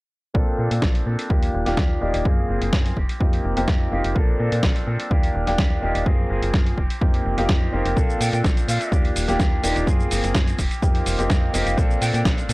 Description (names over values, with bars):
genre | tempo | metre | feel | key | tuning
filtered disco house | 126 BPM | 4/4 | straight | Bb major | A4 = 440 Hz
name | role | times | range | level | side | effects
clear grand piano | accompaniment | 0.3-12.5 s | Eb3 to A4 | -25 LUFS | equal | phaser, sidechain pumping, low-pass filter
electric guitar with an envelope filter | riff | 0.3-12.5 s | Eb3 to A4 | -32 LUFS | right 1 dB | vintage 12-bit sampler grit, sidechain pumping, low-pass filter
slap-like FM bass | bass | 0.3-12.5 s | Eb1 to Bb2 | -24 LUFS | equal | sidechain pumping, low-pass filter
electronic kick drum | drums | 0.3-12.4 s | none | -20 LUFS | equal | none
dusty soul sampler-style drum kit | drums | 0.7-12.5 s | hi-hat, shaker, snare drum | -27 LUFS | equal | none
breathy bright jazz flute | melody | 8.2-9.0, 12.0-12.2 s | F5 to G5 | -30 LUFS | right 1 dB | sidechain pumping, low-pass filter
room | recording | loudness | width
little or no reverb | dry, gritty hardware recording | -18 LUFS | side -22 dB against mid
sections
0.3-12.5 A section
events
filter sweep 0.3-12.5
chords
0.3 Bbmaj9; 1.3 Ebmaj9; 2.3 Gbmaj9#11; 3.0 F9sus4; 4.2 Bbmaj9; 5.1 Ebmaj9; 6.1 Gbmaj9#11; 6.8 F9sus4; 8.0 Bbmaj9; 8.9 Ebmaj9; 9.9 Gbmaj9#11; 10.6 F9sus4; 11.8 Bbmaj9